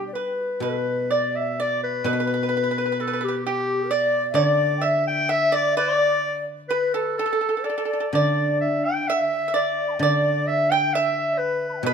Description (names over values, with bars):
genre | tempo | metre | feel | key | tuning
chinese traditional, Chinese chamber ensemble | 64 BPM | 2/4 | rubato | unclear | A4 = 440 Hz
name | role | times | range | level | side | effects
clear clarinet | melody | 0.0-11.9 s | G4 to G5 | -24 LUFS | left 1 dB | none
pipa | second line | 0.0-11.9 s | G4 to G5 | -26 LUFS | right 6 dB | none
xiao | second line | 0.0-11.9 s | G4 to B5 | -28 LUFS | left 5 dB | none
guzheng | accompaniment | 0.0-11.9 s | B2 to D4 | -28 LUFS | left 1 dB | none
room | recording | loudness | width
light reverb | close, detailed microphones | -20 LUFS | side -6 dB against mid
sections
0.6-11.9 A section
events
none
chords
none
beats
| 0.62 1.58 | 2.52 3.44 | 4.36 5.29 | 6.22 7.17 | 8.14 9.08 | 10.02 10.94 | 11.85